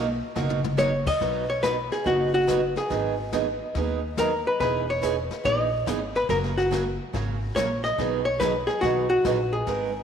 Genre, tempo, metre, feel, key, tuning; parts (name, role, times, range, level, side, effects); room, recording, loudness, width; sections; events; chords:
country, western swing; 142 BPM; 4/4; swing 66% on 8ths; B major; A4 = 440 Hz
picked steel-string acoustic guitar; accompaniment; 0.0-9.9 s; B2 to A#4; -28 LUFS; right 7 dB
upright bass; bass; 0.0-10.0 s; E1 to D#2; -31 LUFS; equal
jazz brush drum kit; drums; 0.4-10.0 s; brushed snare drum, crash cymbal, hi-hat, kick drum, snare drum, toms; -35 LUFS; left 6 dB
archtop guitar, miked and amplified; melody; 0.8-10.0 s; F#4 to D#5; -24 LUFS; left 2 dB
moderate echo chamber reverb, RT60 2.0 s; 1960s-style stereo with parts hard left and right, lossy compression artefacts; -22 LUFS; side -8 dB against mid
0.0-1.2 A section; 1.2-10.0 B section
hollow-body jazz guitar solo 0.0-1.2; drum fill 0.4-0.8
0.0 Bmaj7; 1.2 B; 2.9 G#m7; 4.6 Emaj7; 6.3 F#; 8.0 B6